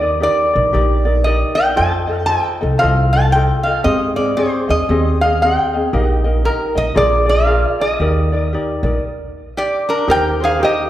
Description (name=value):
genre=Hawaiian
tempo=116 BPM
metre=4/4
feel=swing 62% on 8ths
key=Eb major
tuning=A4 = 441 Hz
part: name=lap resonator guitar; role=melody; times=0.0-10.9 s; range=D4 to A5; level=-16 LUFS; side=equal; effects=analog delay
part: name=ukulele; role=accompaniment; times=0.0-10.9 s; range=C4 to Eb5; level=-20 LUFS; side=left 1 dB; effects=none
part: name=upright bass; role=bass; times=0.0-10.6 s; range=Bb1 to Ab2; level=-18 LUFS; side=equal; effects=none
room=wet recital hall reverb, RT60 1.5 s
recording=heard from further back in the room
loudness=-13 LUFS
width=side -13 dB against mid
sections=0.0-10.1 A section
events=stop 9.0-10.1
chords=0.0 Ebmaj7; 1.8 F7; 3.9 Abmaj7; 5.9 Eb/Bb; 7.0 Bb7; 8.0 Ebmaj7; 10.1 Eb6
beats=0.23 0.74 1.26 | 1.78 2.30 2.82 3.33 | 3.85 4.37 4.89 5.41 | 5.92 6.44 6.96 7.48 | 8.00 8.52 9.03 9.55 | 10.07 10.59